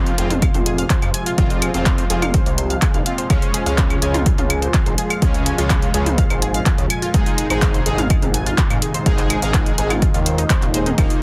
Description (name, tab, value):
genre	melodic techno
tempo	125 BPM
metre	4/4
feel	straight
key	unclear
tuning	A4 = 442 Hz
part	lush unison pad	sustained chords	0.0-11.2 s	C3 to G4	-30 LUFS	equal	chorus, phaser, sidechain pumping
part	analog synth brass	stabs	0.0-11.2 s	Db3 to Ab4	-29 LUFS	equal	chorus, cassette tape, sidechain pumping, dub echo
part	gritty driven synth bass	bass	0.0-11.1 s	Eb1 to Ab2	-25 LUFS	equal	distortion, sidechain pumping
part	overtone-sweeping drone	drone	0.2-11.2 s	F2 to Bb2	-36 LUFS	equal	none
part	analog pluck	arpeggios	0.1-11.2 s	Eb4 to Ab6	-29 LUFS	equal	chorus, sidechain pumping, dub echo
part	deep house drum kit	drums	0.1-11.2 s	claves, handclaps, hi-hat, ride cymbal, toms	-26 LUFS	equal	overdrive
part	electronic kick drum	drums	0.4-11.1 s	none	-20 LUFS	equal	overdrive
room	digital ambience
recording	dense, heavily limited modern master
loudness	-18 LUFS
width	mono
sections	0.0-11.2 A section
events	none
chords	0.0 Fm; 3.3 Db; 7.1 Ab